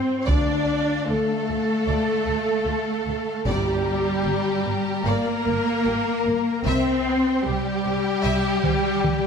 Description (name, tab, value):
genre	cinematic, epic orchestral film score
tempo	76 BPM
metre	4/4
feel	straight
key	G minor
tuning	A4 = 440 Hz
part	warm symphonic violin section	melody	0.0-9.3 s	G4 to D5	-31 LUFS	left 3 dB	none
part	large flute ensemble	second line	0.0-9.3 s	G4 to D5	-29 LUFS	right 1 dB	none
part	warm symphonic violin section	second line	0.0-9.3 s	F4 to Bb5	-32 LUFS	left 2 dB	none
part	warm symphonic viola section	accompaniment	0.0-9.3 s	G3 to D4	-29 LUFS	right 1 dB	none
part	mellow French horn section	sustained chords	0.0-9.3 s	G3 to D4	-26 LUFS	left 5 dB	none
part	warm chamber cello section	bass	0.0-9.3 s	G3 to D4	-29 LUFS	right 4 dB	none
part	warm symphonic double bass section	bass	0.3-9.1 s	G1 to D2	-30 LUFS	right 4 dB	none
part	taiko ensemble	drums	0.3-9.3 s	none	-27 LUFS	right 1 dB	none
part	timpani	percussion	0.3-4.6 s	G2 to D3	-32 LUFS	equal	none
room	moderate scoring stage reverb, RT60 1.7 s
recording	none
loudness	-20 LUFS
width	side -6 dB against mid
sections	0.0-9.3 A section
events	drum fill 8.6-9.3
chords	0.3 Dm; 3.5 Gm; 6.6 C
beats	| 0.28 1.08 1.88 2.67 | 3.47 4.26 5.06 5.85 | 6.65 7.44 8.24 9.03